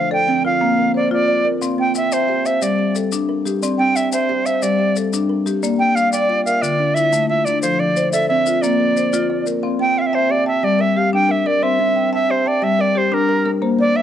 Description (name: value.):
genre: southern african traditional, mbira-style interlocking cycle.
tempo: 120 BPM (dotted quarters).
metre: 12/8.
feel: straight.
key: C mixolydian.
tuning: A4 = 440 Hz.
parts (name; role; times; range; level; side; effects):
bright reedy jazz flute; melody; 0.0-14.0 s; Bb4 to G5; -18 LUFS; right 2 dB; cassette tape.
kalimba; arpeggios; 0.0-14.0 s; D3 to A5; -23 LUFS; right 8 dB; none.
marimba with medium hard mallets; arpeggios; 0.0-13.9 s; D3 to A5; -20 LUFS; left 7 dB; none.
maracas; percussion; 1.6-9.6 s; none; -28 LUFS; left 8 dB; none.
room: light reverb, small room ambience.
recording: home recording on cassette.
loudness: -15 LUFS.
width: side -10 dB against mid.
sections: 0.0-9.6 A section; 9.6-14.0 B section.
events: none.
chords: 0.0 F; 0.6 Bb; 1.6 C; 2.6 Gm; 5.6 Bb; 6.6 Dm; 7.6 F; 8.6 Bb; 9.6 C; 10.6 Gm; 11.6 C; 12.6 Gm.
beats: 0.11 0.62 1.12 | 1.62 2.12 2.62 3.12 | 3.62 4.12 4.63 5.13 | 5.63 6.13 6.63 7.13 | 7.63 8.13 8.63 9.13 | 9.63 10.13 10.63 11.13 | 11.62 12.12 12.62 13.12 | 13.62.